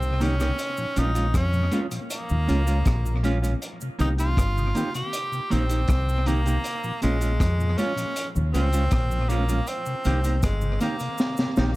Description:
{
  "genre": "roots reggae",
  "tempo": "79 BPM",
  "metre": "4/4",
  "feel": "straight",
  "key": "Bb dorian",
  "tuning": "A4 = 440 Hz",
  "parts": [
    { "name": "edgy tenor saxophone", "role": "melody", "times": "0.0-11.8 s", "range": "Ab3 to G4", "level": "-29 LUFS", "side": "equal", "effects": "dub echo" },
    { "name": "mellow tonewheel organ", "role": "accompaniment", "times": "0.0-11.7 s", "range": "Bb2 to Db4", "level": "-32 LUFS", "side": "left 2 dB", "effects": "slow rotary speaker, tape echo" },
    { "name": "deep dub fingered electric bass", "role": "bass", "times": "0.0-11.8 s", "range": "G1 to F2", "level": "-23 LUFS", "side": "equal", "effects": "none" },
    { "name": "cabasa", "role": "percussion", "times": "0.0-11.7 s", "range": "none", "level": "-42 LUFS", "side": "right 1 dB", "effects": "none" },
    { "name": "clean electric guitar", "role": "accompaniment", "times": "0.2-11.7 s", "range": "Ab3 to G4", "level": "-31 LUFS", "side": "right 3 dB", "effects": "spring reverb, dub echo" },
    { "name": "crunchy breakbeat drum kit", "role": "drums", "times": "0.2-11.8 s", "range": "hi-hat, kick drum, rim click, snare drum", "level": "-27 LUFS", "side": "equal", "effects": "tape echo" }
  ],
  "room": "light reverb",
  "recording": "none",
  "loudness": "-22 LUFS",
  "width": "side -19 dB against mid",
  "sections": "0.0-11.8 A section",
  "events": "drum fill 11.2-11.8",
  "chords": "0.0 Cm7; 0.6 Bbm7; 3.6 Cm7; 6.6 Bbm7; 9.7 Cm7",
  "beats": "| 0.58 1.34 2.10 2.86 | 3.62 4.37 5.13 5.89 | 6.65 7.41 8.16 8.92 | 9.68 10.44 11.19"
}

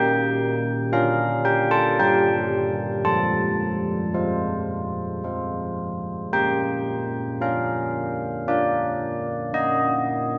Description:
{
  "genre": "classical, tune for church bells",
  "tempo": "56 BPM",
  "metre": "3/4",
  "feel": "straight",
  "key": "Bb major",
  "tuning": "A4 = 440 Hz",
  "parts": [
    { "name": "carillon bells", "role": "solo", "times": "0.0-10.4 s", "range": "F3 to A5", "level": "-23 LUFS", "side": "equal", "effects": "none" }
  ],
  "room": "wet church reverb, RT60 3.5 s",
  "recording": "nothing above 7.5 kHz",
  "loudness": "-23 LUFS",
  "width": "mono",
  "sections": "0.0-10.4 A section",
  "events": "none",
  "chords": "0.0 Bb; 2.0 Gm; 3.1 F; 6.3 Bb; 9.5 Eb5/Bb",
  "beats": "0.94 2.00 | 3.07 4.16 5.25 | 6.33 7.40 8.46 | 9.53"
}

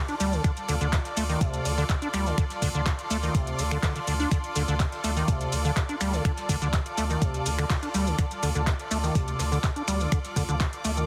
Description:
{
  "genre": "acid house",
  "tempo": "124 BPM",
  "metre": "4/4",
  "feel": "straight",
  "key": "D minor",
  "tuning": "A4 = 440 Hz",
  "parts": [
    { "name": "deep acid bass", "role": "riff", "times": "0.0-11.1 s", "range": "C3 to D4", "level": "-32 LUFS", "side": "equal", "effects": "analog chorus, digital delay" },
    { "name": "clear symphonic string section", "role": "texture", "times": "0.0-11.1 s", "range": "F4 to D6", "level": "-35 LUFS", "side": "equal", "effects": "sidechain pumping" },
    { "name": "booming analog drum machine", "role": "drums", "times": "0.1-11.1 s", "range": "finger snaps, handclaps, hi-hat, shaker", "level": "-36 LUFS", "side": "equal", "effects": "none" },
    { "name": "saturated sub bass", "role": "bass", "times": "0.2-11.0 s", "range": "D2", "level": "-33 LUFS", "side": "equal", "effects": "sidechain pumping" },
    { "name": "soft brush drum kit", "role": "drums", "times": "0.2-11.0 s", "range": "hi-hat, snare drum", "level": "-48 LUFS", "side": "equal", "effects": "none" },
    { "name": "electronic kick drum", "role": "drums", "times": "0.4-10.7 s", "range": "none", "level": "-28 LUFS", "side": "equal", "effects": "none" }
  ],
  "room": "light reverb",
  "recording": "heavily compressed radio sound",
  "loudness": "-27 LUFS",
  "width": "mono",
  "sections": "0.0-11.1 A section",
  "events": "none",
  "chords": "0.0 Dm",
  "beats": "| 0.44 0.93 1.41 1.90 | 2.38 2.86 3.35 3.83 | 4.32 4.80 5.28 5.77 | 6.25 6.73 7.22 7.70 | 8.19 8.67 9.15 9.64 | 10.12 10.61"
}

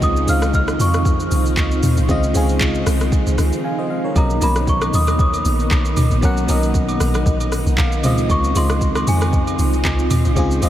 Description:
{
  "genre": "amapiano",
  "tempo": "116 BPM",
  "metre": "4/4",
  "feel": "swing 55% on 16ths",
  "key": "unclear",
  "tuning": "A4 = 439 Hz",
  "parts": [
    { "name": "worn celesta", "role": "melody", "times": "0.0-10.1 s", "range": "G#5 to E#6", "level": "-26 LUFS", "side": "equal", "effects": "analog delay" },
    { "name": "FM electric piano", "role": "accompaniment", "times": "0.0-10.7 s", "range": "B2 to C#6", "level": "-22 LUFS", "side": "left 1 dB", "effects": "chorus" },
    { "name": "ensemble organ-string", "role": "sustained chords", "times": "0.0-10.7 s", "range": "D#3 to D#4", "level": "-24 LUFS", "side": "right 1 dB", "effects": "ensemble chorus, sidechain pumping" },
    { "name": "deep log drum bass", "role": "bass", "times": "0.0-10.7 s", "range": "A#1 to E#2", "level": "-19 LUFS", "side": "equal", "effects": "none" },
    { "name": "smooth R&B drum kit", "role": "drums", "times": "0.0-10.7 s", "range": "handclaps, hi-hat, kick drum, rim click, shaker, toms", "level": "-20 LUFS", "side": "equal", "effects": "overdrive" },
    { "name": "agogo bells and woodblock", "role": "percussion", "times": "4.2-10.7 s", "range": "none", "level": "-30 LUFS", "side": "right 5 dB", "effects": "none" }
  ],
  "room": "moderate huge ambient reverb, RT60 8.7 s",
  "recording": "dreamy mix soaked in reverb",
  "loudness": "-15 LUFS",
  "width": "side -12 dB against mid",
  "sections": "0.0-10.7 A section",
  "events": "FM electric piano fill 3.4-4.2, 7.5-8.3; break 3.6-4.2",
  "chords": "0.0 C#maj9; 4.2 Bmaj9; 8.0 C#maj9",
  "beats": "| 0.02 0.54 1.05 1.57 | 2.09 2.61 3.12 3.64 | 4.16 4.68 5.19 5.71 | 6.23 6.75 7.26 7.78 | 8.30 8.81 9.33 9.85 | 10.37"
}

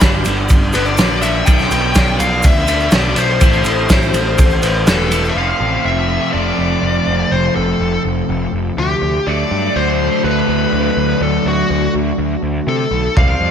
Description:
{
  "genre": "indie rock",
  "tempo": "123 BPM",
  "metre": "4/4",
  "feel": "straight",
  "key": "unclear",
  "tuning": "A4 = 441 Hz",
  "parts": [
    { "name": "biting overdriven guitar", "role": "riff", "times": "0.0-13.5 s", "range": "F2 to F4", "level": "-19 LUFS", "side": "right 1 dB", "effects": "slapback echo" },
    { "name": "fuzz picked electric bass", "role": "bass", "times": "0.0-13.5 s", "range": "E1 to C3", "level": "-19 LUFS", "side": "equal", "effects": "overdrive" },
    { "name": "loose indie drum kit", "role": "drums", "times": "0.0-5.2, 13.2-13.3 s", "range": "kick drum, ride cymbal, snare drum, toms", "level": "-14 LUFS", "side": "equal", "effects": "none" },
    { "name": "tube shaker", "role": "percussion", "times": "0.0-5.3 s", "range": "none", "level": "-32 LUFS", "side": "right 10 dB", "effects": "none" },
    { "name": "bluesy overdriven lead guitar", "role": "melody", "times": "0.7-13.5 s", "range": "F#4 to G5", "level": "-19 LUFS", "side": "left 4 dB", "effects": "distortion, slapback echo, digital delay" },
    { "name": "tine electric piano", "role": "second line", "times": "3.6-5.3 s", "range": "G4 to B4", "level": "-28 LUFS", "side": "equal", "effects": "overdrive, fast stereo tremolo, slapback echo" }
  ],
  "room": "light reverb, small room reverb",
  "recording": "none",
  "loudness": "-12 LUFS",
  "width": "side -8 dB against mid",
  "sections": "0.0-5.4 A section; 5.4-13.5 B section",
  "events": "none",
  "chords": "0.0 G; 1.5 Bdim; 3.4 Amadd9; 5.4 F; 9.3 D",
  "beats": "0.02 0.50 0.99 | 1.47 1.96 2.44 2.93 | 3.42 3.90 4.39 4.88 | 5.36 5.85 6.34 6.83 | 7.32 7.80 8.29 8.78 | 9.27 9.76 10.24 10.73 | 11.22 11.71 12.19 12.68 | 13.17"
}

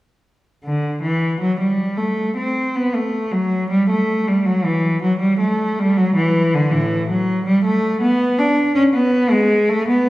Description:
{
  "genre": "classical, baroque-style suite movement for unaccompanied cello",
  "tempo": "80 BPM",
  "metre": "4/4",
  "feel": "rubato",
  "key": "unclear",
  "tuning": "A4 = 440 Hz",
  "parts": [
    { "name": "clear cello", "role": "solo", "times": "0.6-10.1 s", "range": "A2 to D4", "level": "-15 LUFS", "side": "equal", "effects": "none" }
  ],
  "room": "wet recital hall reverb, RT60 1.6 s",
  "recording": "heard from further back in the room",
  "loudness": "-16 LUFS",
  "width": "side -17 dB against mid",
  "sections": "0.6-10.1 A section",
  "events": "none",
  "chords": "none",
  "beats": "| 0.65 1.41 2.17 2.94 | 3.71 4.46 5.21 5.97 | 6.72 7.47 8.21 8.96 | 9.71"
}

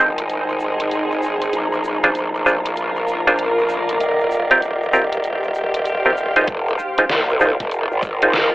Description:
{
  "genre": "glitch hop",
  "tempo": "97 BPM",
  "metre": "4/4",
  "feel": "swing 63% on 16ths",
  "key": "F minor",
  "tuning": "A4 = 438 Hz",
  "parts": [
    { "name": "muted clav", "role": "stabs", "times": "0.0-8.5 s", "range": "C4 to C5", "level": "-16 LUFS", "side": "right 1 dB", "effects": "overdrive, sidechain pumping, low-pass filter, digital delay" },
    { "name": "growl bass", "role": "bass", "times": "0.0-8.5 s", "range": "Eb1 to C2", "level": "-21 LUFS", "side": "equal", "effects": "chorus, high-pass filter" },
    { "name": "granular cloud pad", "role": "texture", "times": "0.0-8.5 s", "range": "Eb4 to F5", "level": "-22 LUFS", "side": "equal", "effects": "built-in reverb, sidechain pumping" },
    { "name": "pop drum kit", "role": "drums", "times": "0.2-8.5 s", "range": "hi-hat, snare drum", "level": "-24 LUFS", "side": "equal", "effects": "overdrive" },
    { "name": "egg shaker", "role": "percussion", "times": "0.2-8.5 s", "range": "none", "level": "-47 LUFS", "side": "equal", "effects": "none" },
    { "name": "electronic kick drum", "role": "drums", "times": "6.5-8.2 s", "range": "none", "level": "-29 LUFS", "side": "equal", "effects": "overdrive" }
  ],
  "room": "wet studio reverb, RT60 0.6 s",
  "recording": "telephone sound",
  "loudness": "-16 LUFS",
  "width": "side -18 dB against mid",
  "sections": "0.0-6.5 A section; 6.5-8.5 B section",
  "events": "filter sweep on clav 0.0-6.5, 6.5-8.5; build-up 6.5-8.5",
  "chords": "0.0 Ab; 1.5 Bb7; 4.0 Eb6; 6.5 Fm7",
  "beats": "0.30 0.92 | 1.53 2.15 2.77 3.39 | 4.01 4.63 5.25 5.86 | 6.48 7.10 7.72 8.34"
}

